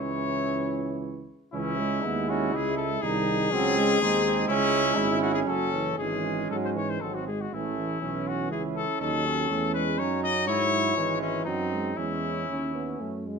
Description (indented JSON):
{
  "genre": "classical, brass quintet",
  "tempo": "121 BPM",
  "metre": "3/4",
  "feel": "uneven beats, rubato",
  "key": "C# minor",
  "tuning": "A4 = 438 Hz",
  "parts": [
    { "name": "warm trumpet", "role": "melody", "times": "0.0-13.3 s", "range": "C#4 to D#5", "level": "-28 LUFS", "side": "left 6 dB", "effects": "none" },
    { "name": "mellow flugelhorn", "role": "second line", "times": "0.0-13.3 s", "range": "B3 to E4", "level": "-33 LUFS", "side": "right 10 dB", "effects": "none" },
    { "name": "brilliant trombone", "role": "accompaniment", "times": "0.0-13.2 s", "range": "E3 to E4", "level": "-33 LUFS", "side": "right 6 dB", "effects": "none" },
    { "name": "mellow French horn", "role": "accompaniment", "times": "0.0-13.4 s", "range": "D#3 to C#4", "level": "-32 LUFS", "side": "left 3 dB", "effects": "none" },
    { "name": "mellow tuba", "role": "bass", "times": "0.0-13.4 s", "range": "F#1 to G#2", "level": "-32 LUFS", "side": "right 5 dB", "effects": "none" }
  ],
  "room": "moderate recital hall reverb, RT60 1.2 s",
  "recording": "close, detailed microphones",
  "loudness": "-24 LUFS",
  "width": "side -5 dB against mid",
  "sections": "0.0-1.5 A section; 1.5-13.4 B section",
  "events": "none",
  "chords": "0.0 C#m; 3.0 G#7/B#; 4.5 C#m; 5.5 F#m; 6.0 C#m/G#; 7.0 G#; 7.5 A; 9.0 D#m7b5; 10.5 C#m/G#; 11.5 G#7/F#; 12.0 C#m"
}